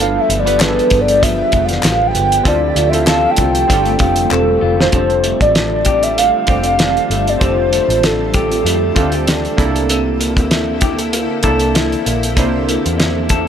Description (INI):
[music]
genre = indie pop, bedroom pop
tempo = 97 BPM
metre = 4/4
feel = swing 55% on 16ths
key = unclear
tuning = A4 = 441 Hz
[part]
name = warbly nostalgic lead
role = melody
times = 0.0-9.3 s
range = A4 to G5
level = -15 LUFS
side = right 1 dB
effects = wide subtle chorus, tape echo
[part]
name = electric guitar through a small old amp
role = accompaniment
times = 0.0-13.5 s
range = G2 to A4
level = -21 LUFS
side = left 6 dB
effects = wide subtle chorus, warbly pitch drift
[part]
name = warm analog keys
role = accompaniment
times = 0.0-13.5 s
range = Bb3 to C5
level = -21 LUFS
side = right 6 dB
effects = chorus
[part]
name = granular cloud pad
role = sustained chords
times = 0.0-13.5 s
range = D3 to A4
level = -23 LUFS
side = equal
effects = built-in reverb
[part]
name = vintage muted picked electric bass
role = bass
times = 0.0-13.5 s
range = E1 to F2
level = -21 LUFS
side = equal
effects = none
[part]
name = cloth-damped thuddy drum kit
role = drums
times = 0.3-13.5 s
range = hi-hat, kick drum, snare drum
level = -17 LUFS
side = equal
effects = none
[part]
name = group handclap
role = percussion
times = 0.6-4.5 s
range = none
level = -22 LUFS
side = left 4 dB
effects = none
[sound]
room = light reverb, small room ambience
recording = none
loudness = -12 LUFS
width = side -8 dB against mid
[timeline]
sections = 0.0-4.9 A section; 4.9-13.5 B section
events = soft synth lead solo 0.0-4.9; drum fill 4.3-4.9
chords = 0.0 G7; 2.5 Dm7; 3.7 G9sus4; 4.9 F69; 9.6 C13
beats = 0.60 1.22 1.84 | 2.46 3.08 3.70 4.32 | 4.93 5.55 6.17 6.79 | 7.41 8.03 8.65 9.27 | 9.89 10.51 11.13 11.76 | 12.38 13.00